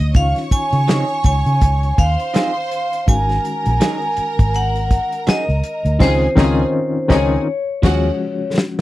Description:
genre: lush 1970s-style soul.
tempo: 82 BPM.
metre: 4/4.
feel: swing 58% on 16ths.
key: unclear.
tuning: A4 = 440 Hz.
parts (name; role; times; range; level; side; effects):
vibraphone with hard mallets; melody; 0.0-8.5 s; C5 to Ab5; -21 LUFS; equal; none.
clear studio violin section; second line; 0.0-8.1 s; Gb4 to Eb6; -27 LUFS; right 1 dB; none.
barky reed electric piano; accompaniment; 0.0-8.8 s; Eb3 to Gb4; -22 LUFS; left 3 dB; fast tremolo.
vintage muted fingered electric bass; bass; 0.0-8.1 s; Ab1 to Db3; -18 LUFS; equal; none.
warm soul drum kit; drums; 0.1-8.8 s; crash cymbal, hi-hat, kick drum, snare drum; -15 LUFS; equal; none.
electric guitar through a small old amp; riff; 0.9-8.1 s; F3 to Ab4; -24 LUFS; right 5 dB; none.
room: little or no reverb.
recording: dry, close 1970s-style studio recording.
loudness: -14 LUFS.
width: side -16 dB against mid.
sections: 0.0-8.8 A section.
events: band accent 6.0-8.8; drum fill 7.5-8.8.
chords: 0.2 Dbmaj9; 3.1 Ab7sus4; 6.0 Dbmaj9; 7.5 Ebm11.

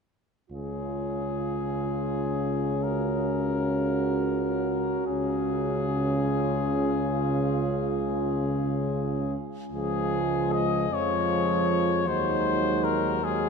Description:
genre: classical, hymn-like piece for brass band.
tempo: 45-57 BPM (dotted quarters).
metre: 6/8.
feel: rubato.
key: Db major.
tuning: A4 = 441 Hz.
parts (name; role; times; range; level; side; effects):
warm cornet; melody; 0.5-13.5 s; Ab4 to Eb5; -30 LUFS; left 6 dB; none.
warm French horn section; second line; 0.5-13.5 s; Eb4 to Gb4; -32 LUFS; right 6 dB; none.
warm euphonium; accompaniment; 0.5-13.5 s; Ab3 to Db4; -32 LUFS; left 4 dB; none.
warm trombone; accompaniment; 0.5-13.5 s; Db3 to Gb3; -32 LUFS; right 6 dB; none.
warm tuba; bass; 0.5-13.5 s; Db2 to F2; -31 LUFS; left 1 dB; none.
room: wet cathedral reverb, RT60 5.3 s.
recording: none.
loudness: -24 LUFS.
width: side -5 dB against mid.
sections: 0.5-9.7 A section; 9.7-13.5 B section.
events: none.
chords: 0.5 Db; 12.1 Ab7/Eb.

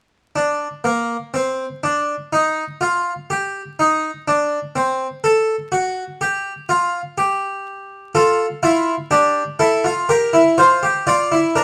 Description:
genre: classical, baroque-style 3-part fugue for harpsichord.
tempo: 62 BPM.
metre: 4/4.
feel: straight.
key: G minor.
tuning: A4 = 440 Hz.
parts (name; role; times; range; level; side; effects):
harpsichord; solo; 0.4-11.6 s; Bb3 to D5; -18 LUFS; equal; none.
room: light reverb.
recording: close, detailed microphones, vinyl crackle.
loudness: -19 LUFS.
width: mono.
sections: 0.4-11.6 A section.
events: none.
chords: 0.4 N.C.; 8.2 Dm; 10.1 Gm.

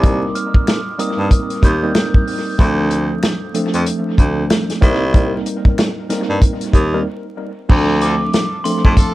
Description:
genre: hip hop, boom-bap hip-hop.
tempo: 94 BPM.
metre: 4/4.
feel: swing 59% on 16ths.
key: D phrygian.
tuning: A4 = 441 Hz.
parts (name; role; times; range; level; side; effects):
mellow tine electric piano; accompaniment; 0.0-9.1 s; F3 to Bb4; -20 LUFS; equal; overdrive, medium stereo tremolo, cassette tape, high-pass filter, low-pass filter, dub echo.
warm baritone saxophone; bass; 0.0-9.0 s; C2 to G2; -17 LUFS; equal; none.
warm soul drum kit; drums; 0.0-9.1 s; crash cymbal, hi-hat, kick drum, snare drum; -14 LUFS; equal; vintage 12-bit sampler grit.
glockenspiel with soft plastic mallets; melody; 0.4-1.8, 8.0-8.9 s; C6 to G6; -25 LUFS; right 1 dB; high-pass filter, low-pass filter, dub echo.
finger snap; percussion; 0.7-6.0 s; none; -40 LUFS; left 3 dB; none.
brilliant trumpet section; stabs; 8.0-9.1 s; D4 to A4; -27 LUFS; equal; high-pass filter, low-pass filter, dub echo.
room: studio reverb.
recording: echo-heavy mix, vinyl crackle.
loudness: -14 LUFS.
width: side -17 dB against mid.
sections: 0.0-7.7 A section; 7.7-9.1 B section.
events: break 7.1-7.7.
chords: 0.0 Cm7; 2.6 Dm7; 4.8 Cm7; 7.7 Dm7.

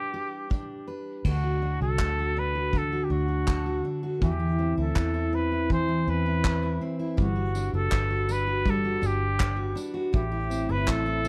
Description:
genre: acoustic pop.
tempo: 81 BPM.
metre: 4/4.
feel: straight.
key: G major.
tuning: A4 = 440 Hz.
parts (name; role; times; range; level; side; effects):
breathy trumpet; melody; 0.0-11.3 s; F#4 to C5; -33 LUFS; equal; none.
fingerpicked steel-string acoustic guitar; accompaniment; 0.0-11.3 s; A2 to B4; -31 LUFS; equal; none.
vintage brush drum kit; drums; 0.5-11.3 s; crash cymbal, handclaps, kick drum, tambourine; -31 LUFS; equal; none.
vintage muted fingered electric bass; bass; 1.2-11.3 s; F#1 to E2; -31 LUFS; equal; none.
group handclap; percussion; 7.9-11.1 s; none; -40 LUFS; equal; none.
room: little or no reverb.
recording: close, detailed microphones.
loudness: -27 LUFS.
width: mono.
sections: 0.0-1.2 A section; 1.2-11.3 B section.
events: none.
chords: 0.0 G; 1.2 D; 4.2 Cmaj7; 7.2 Gmaj7; 10.1 Am7.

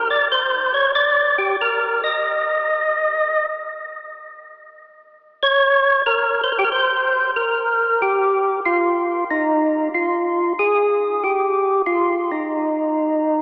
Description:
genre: jazz.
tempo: 93 BPM.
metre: 4/4.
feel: swing 69% on 8ths.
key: unclear.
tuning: A4 = 437 Hz.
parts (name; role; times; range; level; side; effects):
percussive tonewheel organ; solo; 0.0-13.4 s; Eb4 to Eb5; -16 LUFS; equal; slow rotary speaker, overdrive.
room: wet cathedral reverb, RT60 4.5 s.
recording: recorded in a church or concert hall, AM radio sound.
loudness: -16 LUFS.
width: side -24 dB against mid.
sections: 0.0-6.0 A section; 6.0-13.4 B section.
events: tonewheel organ solo 0.0-6.0.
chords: none.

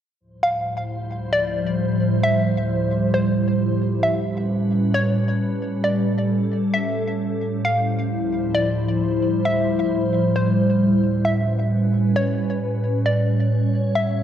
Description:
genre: hip hop.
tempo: 133 BPM.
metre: 4/4.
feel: half-time.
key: D dorian.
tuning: A4 = 440 Hz.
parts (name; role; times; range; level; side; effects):
glassy FM pad; sustained chords; 0.2-14.2 s; D2 to C#5; -20 LUFS; equal; ensemble chorus, built-in reverb, phaser.
hollow square pluck; melody; 0.4-14.2 s; C5 to F5; -25 LUFS; equal; chorus, digital delay.
room: moderate lush hall reverb, RT60 2.4 s.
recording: dark, warm production.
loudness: -19 LUFS.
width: side -10 dB against mid.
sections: 0.2-14.2 A section.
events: none.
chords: 0.2 Dm11; 3.8 A9; 7.4 Dm11; 11.0 A9.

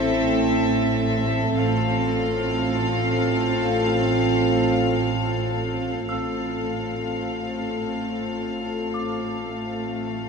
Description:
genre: cinematic, suspense film score.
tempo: 53 BPM.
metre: 4/4.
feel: straight.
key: unclear.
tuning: A4 = 444 Hz.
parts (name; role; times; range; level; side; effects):
rich studio violin section; melody; 0.0-10.3 s; E5 to F5; -29 LUFS; left 4 dB; none.
warm studio violin section; second line; 0.0-10.3 s; A4; -29 LUFS; left 4 dB; none.
warm chamber viola section; accompaniment; 0.0-10.3 s; C4; -27 LUFS; right 6 dB; none.
dark French horn section; sustained chords; 0.0-10.3 s; C4 to F4; -28 LUFS; left 3 dB; none.
warm studio cello section; bass; 0.0-10.3 s; A2 to A3; -29 LUFS; right 1 dB; none.
warm studio double bass section; bass; 0.0-10.3 s; A1; -30 LUFS; right 6 dB; none.
music box; texture; 0.0-10.3 s; A5 to E6; -37 LUFS; right 2 dB; none.
room: moderate scoring stage reverb, RT60 1.9 s.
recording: none.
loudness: -21 LUFS.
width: side -5 dB against mid.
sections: 0.0-10.3 A section.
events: none.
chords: 0.0 Am; 1.6 F/A.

